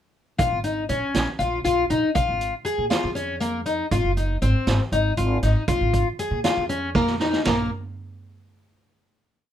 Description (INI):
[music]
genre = progressive instrumental, band music in an uneven meter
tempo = 237 BPM (eighths)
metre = 7/8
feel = straight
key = Bb minor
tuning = A4 = 440 Hz
[part]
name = fingerpicked twelve-string acoustic guitar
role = arpeggios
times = 0.4-7.7 s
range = Bb3 to Ab4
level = -23 LUFS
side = left 2 dB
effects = none
[part]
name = upright bass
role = bass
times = 0.4-7.7 s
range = Gb1 to Bb2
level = -25 LUFS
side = equal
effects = none
[part]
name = street-band drum kit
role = drums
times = 0.4-7.6 s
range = hi-hat, kick drum, ride cymbal, snare drum, toms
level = -26 LUFS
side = right 4 dB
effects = none
[sound]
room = light reverb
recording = minimal, uncompressed stereo recording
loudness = -20 LUFS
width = side -10 dB against mid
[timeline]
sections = 0.4-7.5 A section; 7.5-9.2 final note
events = drum fill 6.9-7.5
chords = 0.4 Bbm7; 3.9 Ab7; 5.7 Bb7(no3); 7.5 N.C.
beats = | 0.39 0.65 0.90 1.15 1.40 1.65 1.90 | 2.15 2.40 2.65 2.90 3.15 3.41 3.66 | 3.91 4.16 4.42 4.67 4.92 5.17 5.43 | 5.68 5.93 6.19 6.44 6.70 6.95 7.20 | 7.46